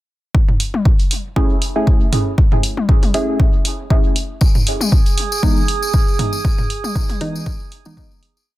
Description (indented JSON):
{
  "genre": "dub techno",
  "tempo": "118 BPM",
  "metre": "4/4",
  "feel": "swing 55% on 16ths",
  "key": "unclear",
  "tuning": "A4 = 436 Hz",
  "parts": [
    { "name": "electronic kick drum", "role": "drums", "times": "0.3-8.1 s", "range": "none", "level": "-15 LUFS", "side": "equal", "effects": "none" },
    { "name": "electronic toms", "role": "percussion", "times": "0.5-7.2 s", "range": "none", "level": "-22 LUFS", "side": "equal", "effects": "sidechain pumping on toms, dub echo" },
    { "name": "electronic hi-hat", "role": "drums", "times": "0.6-8.3 s", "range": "none", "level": "-23 LUFS", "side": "right 2 dB", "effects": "none" },
    { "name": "deep mellow chord stab", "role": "stabs", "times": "1.4-8.0 s", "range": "E3 to G#4", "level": "-22 LUFS", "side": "equal", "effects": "chorus, phaser, sidechain pumping, dub echo" },
    { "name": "tambourine", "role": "percussion", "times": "4.4-8.5 s", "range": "none", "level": "-27 LUFS", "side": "left 4 dB", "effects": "none" },
    { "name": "drifting glass-harmonics texture", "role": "texture", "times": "4.8-8.5 s", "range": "G#4", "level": "-24 LUFS", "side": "right 8 dB", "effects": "chorus, built-in reverb, sidechain pumping" }
  ],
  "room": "little or no reverb",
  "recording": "dense, heavily limited modern master",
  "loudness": "-14 LUFS",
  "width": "side -16 dB against mid",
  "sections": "0.3-8.5 groove",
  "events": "fade-out 5.8-8.5",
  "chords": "0.3 Amaj7; 4.4 Emaj7"
}